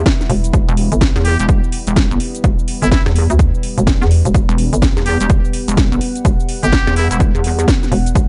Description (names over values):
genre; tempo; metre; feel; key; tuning
bass house; 126 BPM; 4/4; swing 61% on 16ths; E minor; A4 = 440 Hz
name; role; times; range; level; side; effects
deep dark ambient pad; sustained chords; 0.0-8.3 s; G3 to F#5; -27 LUFS; equal; chorus, built-in reverb, sidechain pumping
pulsing pluck wobble bass; bass; 0.0-7.7 s; E1 to E2; -18 LUFS; equal; chorus, tube saturation, sidechain pumping
downlifter; sound effects; 0.0-0.5 s; none; barely audible; none; none
electronic kick drum; drums; 0.1-8.3 s; none; -17 LUFS; equal; overdrive
house drum kit; drums; 0.1-8.3 s; hi-hat, shaker, snare drum; -24 LUFS; equal; overdrive
hollow knocking FM bass; bass; 0.3-8.3 s; E1 to E2; -17 LUFS; equal; tube saturation, sidechain pumping
trumpet with straight mute; melody; 1.2-7.2 s; E4 to G4; -24 LUFS; equal; delay
room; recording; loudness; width
digital ambience; dark, warm production, nothing above 10.5 kHz; -14 LUFS; mono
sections
0.0-8.3 A section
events
none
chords
0.0 Em